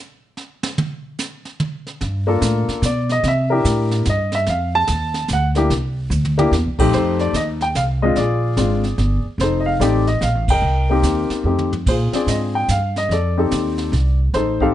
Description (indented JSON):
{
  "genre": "jazz piano trio",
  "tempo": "146 BPM",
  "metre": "3/4",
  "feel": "swing 65% on 8ths",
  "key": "F mixolydian",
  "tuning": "A4 = 440 Hz",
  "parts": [
    { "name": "jazz brush drum kit", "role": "drums", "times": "0.4-14.7 s", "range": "brushed snare drum, crash cymbal, hi-hat, kick drum, snare drum, toms", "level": "-26 LUFS", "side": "right 2 dB", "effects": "none" },
    { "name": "upright bass", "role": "bass", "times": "2.0-14.7 s", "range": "F1 to C3", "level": "-19 LUFS", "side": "right 1 dB", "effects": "none" },
    { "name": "warm upright piano", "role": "melody", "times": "2.3-14.7 s", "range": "F2 to A5", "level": "-19 LUFS", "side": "left 2 dB", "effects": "none" }
  ],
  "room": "light reverb",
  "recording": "nothing above 10.7 kHz",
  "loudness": "-16 LUFS",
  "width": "side -12 dB against mid",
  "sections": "0.0-6.9 A section; 6.9-14.7 B section",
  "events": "upright piano solo 0.0-6.9; drum solo 0.0-2.0; drum fill 6.1-6.5, 11.5-11.9; band accent 10.4",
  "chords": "0.0 N.C.; 2.0 Gm7; 3.2 C7; 4.5 F7; 5.3 D; 5.7 C; 6.9 F7; 8.2 Bb7; 9.4 F7; 10.6 Cm7; 11.5 F7; 11.9 Bb7; 13.1 F7"
}